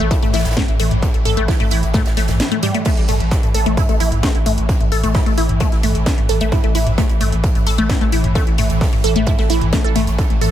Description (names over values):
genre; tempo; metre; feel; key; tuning
driving peak-time techno; 131 BPM; 4/4; straight; unclear; A4 = 440 Hz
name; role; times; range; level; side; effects
resonant blip pluck; riff; 0.0-10.5 s; G3 to A4; -20 LUFS; left 1 dB; phaser, tube saturation, vintage 12-bit sampler grit, sidechain pumping, analog delay
saturated sub bass; bass; 0.0-10.5 s; A1; -20 LUFS; equal; overdrive, sidechain pumping, low-pass filter
swarming drone; drone; 0.0-10.5 s; A2 to E3; -26 LUFS; equal; built-in reverb, sidechain pumping
techno drum kit; drums; 0.0-10.5 s; crash cymbal, hi-hat, snare drum, toms; -24 LUFS; equal; overdrive, sidechain pumping on hats, sidechain pumping on toms, sidechain pumping on cymbals, dub echo
electronic kick drum; drums; 0.1-10.3 s; none; -17 LUFS; equal; distortion, overdrive
huge arena drum kit; drums; 0.1-10.5 s; hi-hat, snare drum; -32 LUFS; right 2 dB; sidechain pumping on hats, high-pass filter on hats, high-pass filter on snare, high-pass filter on room, dub echo
room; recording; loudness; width
light reverb, digital ambience; echo-heavy mix; -14 LUFS; side -11 dB against mid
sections
0.0-10.5 A section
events
none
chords
0.0 A5